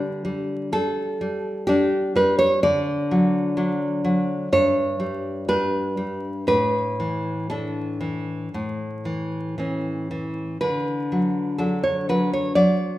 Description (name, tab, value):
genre	romantic piece for solo classical guitar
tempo	57-65 BPM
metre	4/4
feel	rubato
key	D major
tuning	A4 = 435 Hz
part	nylon-string guitar	solo	0.0-13.0 s	G2 to D5	-21 LUFS	equal	none
room	moderate recital hall reverb, RT60 1.3 s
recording	minimal, uncompressed stereo recording, vinyl crackle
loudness	-21 LUFS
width	side -15 dB against mid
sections	0.0-13.0 A section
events	none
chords	0.0 G/D; 2.6 D; 4.5 G; 6.5 Asus4; 8.5 A; 10.6 D